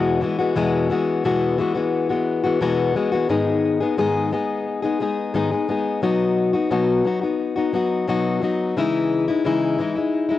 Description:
pop; 88 BPM; 4/4; straight; E major; A4 = 439 Hz
fingerpicked plugged-in steel-string acoustic guitar; solo; 0.0-10.4 s; E2 to G#4; -19 LUFS; left 3 dB; cassette tape, tape echo
moderate spring reverb, RT60 1.6 s, small room ambience; home recording on cassette; -19 LUFS; side -13 dB against mid
0.0-3.3 A section; 3.3-10.4 B section
0.0 Eadd9; 3.3 G#m; 6.0 B; 8.8 C#madd9
| 0.56 1.24 1.92 2.60 | 3.29 3.97 4.66 5.34 | 6.03 6.71 7.39 8.08 | 8.76 9.45 10.13

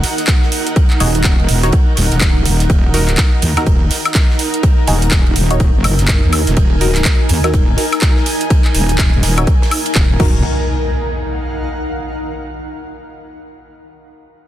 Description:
bass house; 124 BPM; 4/4; swing 61% on 16ths; Eb minor; A4 = 441 Hz
wobble bass; bass; 0.0-10.4 s; Eb1 to Eb2; -15 LUFS; equal; chorus, overdrive, sidechain pumping
damped 70s drum kit; drums; 0.0-10.1 s; ride cymbal, snare drum; -29 LUFS; right 4 dB; high-pass filter on cymbals, high-pass filter on snare, high-pass filter on room
garage drum kit; drums; 0.0-10.3 s; crash cymbal, handclaps, hi-hat, woodblock; -19 LUFS; equal; overdrive
granular cloud pad; texture; 0.0-12.3 s; Eb4 to Ab5; -22 LUFS; equal; built-in reverb, sidechain pumping
electronic kick drum; drums; 0.3-10.3 s; -13 LUFS; equal; overdrive
band-passed chord stab; stabs; 1.0-10.4 s; Eb4 to Db5; -23 LUFS; equal; phaser, sidechain pumping, digital delay
impact; sound effects; 10.2-12.1 s; -21 LUFS; equal
digital ambience; dense, heavily limited modern master; -11 LUFS; side -13 dB against mid
0.0-10.4 A section; 10.4-12.4 B section
filter sweep on synth stab 0.0-10.4
0.0 Ebm
0.28 | 0.76 1.25 1.73 2.21 | 2.70 3.18 3.67 4.15 | 4.63 5.12 5.60 6.08 | 6.57 7.05 7.54 8.02 | 8.50 8.99 9.47 9.96 | 10.44 10.92 11.41 11.89

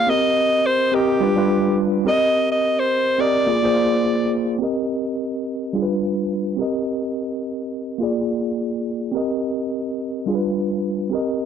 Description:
afrobeats; 106 BPM; 4/4; swing 55% on 16ths; C minor; A4 = 440 Hz
breathy alto saxophone; melody; 0.0-4.3 s; G4 to F5; -19 LUFS; equal; analog delay
mellow tine electric piano; accompaniment; 0.0-11.5 s; G3 to Eb5; -20 LUFS; equal; medium stereo tremolo
little or no reverb; dry, gritty hardware recording, low-pass filter; -18 LUFS; side -8 dB against mid
0.0-4.6 A section; 4.6-11.5 B section
filter sweep 4.6-11.5
0.1 Cm7; 1.2 G7; 2.1 Cm7; 3.5 Bb7; 4.6 Cm7; 5.7 G7; 6.6 Cm7; 8.0 Bb7; 9.1 Cm7; 10.3 G7
| 0.08 0.65 1.22 1.78 | 2.35 2.91 3.48 4.04 | 4.61 5.18 5.74 6.31 | 6.88 7.44 8.01 8.57 | 9.14 9.71 10.27 10.84 | 11.40

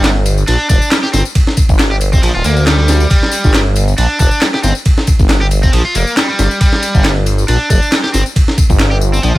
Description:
breakbeat, breaks; 137 BPM; 4/4; swing 55% on 16ths; G minor pentatonic; A4 = 444 Hz
crunchy overdriven guitar; riff; 0.0-9.4 s; F3 to G4; -17 LUFS; equal; ping-pong delay
phased detuned saw bass; bass; 0.0-9.4 s; D1 to D2; -12 LUFS; equal; phaser
breakbeat sampler-style drum kit; drums; 0.0-9.4 s; kick drum, ride cymbal, snare drum; -13 LUFS; equal
electronic handclaps and tambourine; drums; 0.0-9.3 s; -21 LUFS; left 2 dB
little or no reverb; -10 LUFS; side -17 dB against mid
0.0-9.4 A section
0.0 G5
0.04 0.48 0.91 | 1.35 1.79 2.23 2.67 | 3.10 3.54 3.98 4.42 | 4.86 5.29 5.73 6.17 | 6.61 7.04 7.48 7.92 | 8.36 8.80 9.23

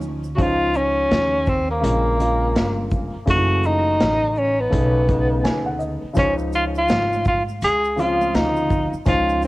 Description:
hip hop, jazz-hop; 83 BPM; 4/4; swing 62% on 16ths; Db major; A4 = 440 Hz
dark upright piano; accompaniment; 0.0-9.5 s; Db3 to Ab5; -25 LUFS; left 1 dB; cassette tape
upright bass; bass; 0.0-9.5 s; Gb1 to Eb2; -24 LUFS; equal
vintage drum kit; drums; 0.0-9.5 s; hi-hat, kick drum, shaker, snare drum; -23 LUFS; equal; cassette tape
congas and tube shaker; percussion; 0.0-0.4, 6.2-9.5 s; -38 LUFS; right 7 dB
mellow tenor saxophone; melody; 0.4-9.5 s; Bb3 to Ab4; -20 LUFS; equal
studio reverb; home recording on cassette; -17 LUFS; side -19 dB against mid
0.4-9.5 A section
upright piano fill 5.1-6.2
0.4 Dbmaj9; 1.8 Bbm7; 3.3 Gbm7; 4.7 Cb9; 6.2 Dbmaj9
| 0.39 1.11 1.83 2.55 | 3.28 4.00 4.72 5.45 | 6.17 6.89 7.62 8.34 | 9.06

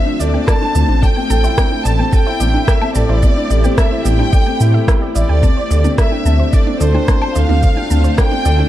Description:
piano and strings electronica; 109 BPM; 4/4; straight; D minor; A4 = 442 Hz
rich chamber violin section; melody; 0.0-8.7 s; C5 to A5; -21 LUFS; left 1 dB
granular cloud pad; sustained chords; 0.0-8.7 s; A3 to C5; -24 LUFS; right 1 dB; built-in reverb, sidechain pumping
soft round pluck; arpeggios; 0.0-8.7 s; D4 to A5; -27 LUFS; right 3 dB; chorus, sidechain pumping, tape echo
felt-muted upright piano; riff; 0.0-8.7 s; C4 to E5; -20 LUFS; left 1 dB
dark detuned saw bass; bass; 0.2-8.6 s; A1 to A2; -14 LUFS; equal; sidechain pumping
electronic shaker, rim click and woodblock; drums; 0.2-8.6 s; -22 LUFS; equal; overdrive
electronic kick drum; drums; 0.5-8.3 s; -13 LUFS; equal
light reverb, digital ambience; dark, warm production; -11 LUFS; side -13 dB against mid
0.0-8.7 A section
0.0 Dm7; 1.0 Am7; 5.4 Dm7
0.48 | 1.03 1.58 2.13 2.68 | 3.23 3.78 4.33 4.88 | 5.43 5.98 6.53 7.08 | 7.63 8.18

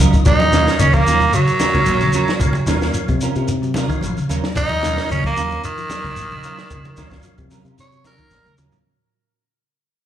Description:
afrobeat; 112 BPM; 4/4; straight; Eb dorian; A4 = 441 Hz
percussive tonewheel organ; accompaniment; 0.0-8.5 s; Gb3 to Bb5; -29 LUFS; left 1 dB; overdrive, chorus vibrato, fast rotary speaker, slapback echo
electric guitar at the edge of break-up; arpeggios; 0.0-8.8 s; Db3 to Gb3; -24 LUFS; left 2 dB; ensemble chorus, slapback echo
semi-hollow electric guitar; stabs; 0.0-8.8 s; Gb3 to Bb4; -26 LUFS; right 8 dB; ensemble chorus, slapback echo
compact cocktail drum kit; drums; 0.0-8.8 s; hi-hat, kick drum, snare drum, toms; -20 LUFS; equal
shekere; percussion; 0.1-8.8 s; -26 LUFS; left 1 dB
raspy tenor saxophone; melody; 0.3-8.6 s; Eb3 to Db5; -18 LUFS; right 2 dB; slapback echo
fingered electric bass; bass; 0.3-8.7 s; Bb1 to Eb3; -21 LUFS; equal
congas; percussion; 0.3-8.7 s; -25 LUFS; equal; slapback echo
small room ambience; live gig heard through the venue's PA, club reverb; -15 LUFS; side -10 dB against mid
0.3-8.8 A section
tonewheel organ fill 0.0, 3.5-4.6; fade-out 0.3-8.8; tenor saxophone solo 0.3-8.8; drum fill 8.3-8.8
0.3 Ebm9
| 0.26 0.80 1.34 1.87 | 2.41 2.95 3.48 4.02 | 4.56 5.09 5.63 6.17 | 6.70 7.24 7.78 8.31

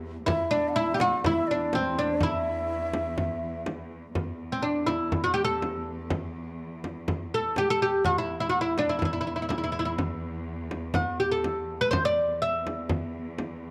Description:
Arabic maqam ensemble; 124 BPM; 4/4; straight; E maqam bayati; A4 = 443 Hz
warm studio cello section; drone; 0.0-13.7 s; E2; -39 LUFS; equal
oud; melody; 0.3-13.3 s; C4 to E5; -28 LUFS; equal
breathy ney; second line; 0.3-3.7 s; C5 to F#5-50c; -34 LUFS; equal
frame drum; percussion; 0.3-13.5 s; -33 LUFS; equal
moderate echo chamber reverb, RT60 1.3 s, small room ambience; -28 LUFS; mono
0.0-4.2 A section; 4.2-13.7 B section
| 0.27 0.76 1.24 1.73 | 2.21 2.70 3.18 3.67 | 4.15 4.64 5.12 5.61 | 6.10 6.58 7.07 7.55 | 8.04 8.52 9.01 9.49 | 9.98 10.46 10.95 11.44 | 11.92 12.40 12.89 13.37

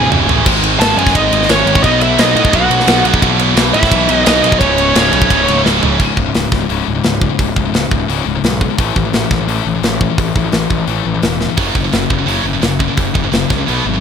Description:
heavy metal; 172 BPM; 4/4; straight; C# minor; A4 = 439 Hz
high-gain lead guitar; melody; 0.0-5.6 s; C#5 to A5; -16 LUFS; equal; distortion, tape echo
high-gain lead guitar; second line; 0.0-5.6 s; C#4 to A4; -21 LUFS; right 4 dB; distortion
heavy high-gain guitar; riff; 0.0-6.0, 11.6-14.0 s; C#2 to B3; -16 LUFS; right 18 dB; distortion
scooped high-gain guitar; riff; 0.0-14.0 s; C#2 to B3; -18 LUFS; left 13 dB; distortion
fuzz picked electric bass; bass; 0.0-14.0 s; C#1 to A2; -18 LUFS; right 1 dB; overdrive
tight metal drum kit; drums; 0.1-13.8 s; crash cymbal, hi-hat, kick drum, ride cymbal, snare drum, toms; -16 LUFS; equal
little or no reverb; -11 LUFS; side -7 dB against mid
0.0-6.0 A section; 6.0-14.0 B section
drum fill 0.0-0.5, 5.6-6.0, 11.4
0.5 G#5; 1.8 B; 3.2 E5/B; 4.6 C#5; 8.8 A5; 11.6 F#5
0.11 | 0.46 0.80 1.15 1.49 | 1.84 2.18 2.53 2.88 | 3.22 3.57 3.91 4.26 | 4.60 4.95 5.30 5.64 | 5.99 6.34 6.69 7.04 | 7.39 7.74 8.09 8.44 | 8.79 9.14 9.48 9.84 | 10.19 10.54 10.88 11.23 | 11.58 11.93 12.28 12.63 | 12.98 13.33 13.68

